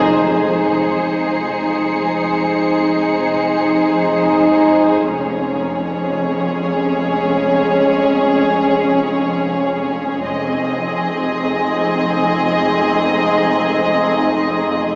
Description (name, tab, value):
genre	cinematic, suspense film score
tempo	free time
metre	none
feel	none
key	F minor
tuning	A4 = 440 Hz
part	muted symphonic violin section	melody	0.0-15.0 s	C5 to Eb5	-22 LUFS	equal	none
part	muted symphonic violin section	second line	0.0-15.0 s	Ab4	-21 LUFS	equal	none
part	muted symphonic viola section	accompaniment	0.0-15.0 s	C4 to Eb4	-20 LUFS	equal	none
part	warm French horn section	sustained chords	0.0-15.0 s	Ab3 to Eb4	-19 LUFS	equal	none
part	muted symphonic cello section	bass	0.0-15.0 s	F2	-22 LUFS	equal	none
part	muted symphonic double bass section	bass	0.0-15.0 s	F1	-27 LUFS	equal	none
part	muted symphonic violin section	texture	0.0-4.7 s	C7 to Db7	-28 LUFS	equal	none
part	timpani	percussion	5.1-6.0, 10.2-11.2 s	F2	-37 LUFS	equal	none
room	wet cathedral reverb, RT60 4.7 s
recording	recorded in a church or concert hall, small speaker sound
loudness	-14 LUFS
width	side -35 dB against mid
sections	0.0-15.0 A section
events	band accent 0.0-0.5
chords	0.0 Fm7; 5.1 Db/F; 10.2 Fm7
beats	free time